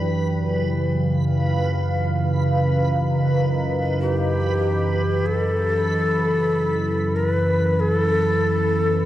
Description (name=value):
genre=ambient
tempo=free time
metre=none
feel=none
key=unclear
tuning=A4 = 440 Hz
part: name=deep dark ambient pad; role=sustained chords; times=0.0-9.1 s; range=C#3 to A#5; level=-25 LUFS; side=right 1 dB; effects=chorus, built-in reverb
part: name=analog drone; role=drone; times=0.0-9.1 s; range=F#2 to E3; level=-22 LUFS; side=equal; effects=chorus
part: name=backwards swelling texture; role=texture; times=0.0-9.1 s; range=B4 to B5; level=-28 LUFS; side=equal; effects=built-in reverb
part: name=breathy bright shakuhachi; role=melody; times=4.0-9.1 s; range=G4 to B4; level=-22 LUFS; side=left 1 dB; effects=ping-pong delay
room=wet cathedral reverb, RT60 5.3 s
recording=worn, warbling old tape, cassette tape, warbly pitch drift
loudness=-18 LUFS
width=side -13 dB against mid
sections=0.0-5.2 A section; 5.2-9.1 B section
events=none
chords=0.1 C#7; 5.2 F#m7